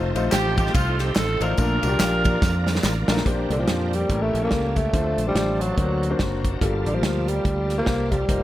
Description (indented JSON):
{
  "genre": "uptempo gospel",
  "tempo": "143 BPM",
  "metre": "4/4",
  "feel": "swing 59% on 8ths",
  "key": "Bb major",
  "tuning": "A4 = 441 Hz",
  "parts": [
    { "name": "clear baby grand piano", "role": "accompaniment", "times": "0.0-8.4 s", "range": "G2 to C5", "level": "-27 LUFS", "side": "left 3 dB", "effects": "tape echo" },
    { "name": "bright tonewheel organ", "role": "sustained chords", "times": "0.0-8.4 s", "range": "Eb3 to Bb4", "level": "-32 LUFS", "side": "right 2 dB", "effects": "slow rotary speaker, chorus vibrato" },
    { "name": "fingered electric bass", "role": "bass", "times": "0.0-8.4 s", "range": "F1 to F2", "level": "-25 LUFS", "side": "equal", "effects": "none" },
    { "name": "natural country drum kit", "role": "drums", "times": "0.2-8.4 s", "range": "hi-hat, kick drum, ride cymbal, snare drum", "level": "-25 LUFS", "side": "equal", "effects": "tape echo" },
    { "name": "tambourine and handclaps", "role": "percussion", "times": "0.2-3.2 s", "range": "none", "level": "-35 LUFS", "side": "equal", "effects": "none" },
    { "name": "clear saxophone section", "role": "melody", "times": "0.3-3.1 s", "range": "A3 to Bb4", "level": "-26 LUFS", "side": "right 2 dB", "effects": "tape echo" },
    { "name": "growling tenor saxophone", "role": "melody", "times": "3.5-8.4 s", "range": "D3 to Bb3", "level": "-25 LUFS", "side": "equal", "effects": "tape echo" }
  ],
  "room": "small room ambience",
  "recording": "echo-heavy mix",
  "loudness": "-20 LUFS",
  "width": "side -14 dB against mid",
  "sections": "0.0-3.3 A section; 3.3-8.4 B section",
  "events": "drum fill 2.4-3.3",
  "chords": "0.0 F7; 1.6 Bbmaj7; 3.3 Bb69; 4.1 A7b9; 4.9 Dm7; 5.8 D7b13; 6.6 Gm9"
}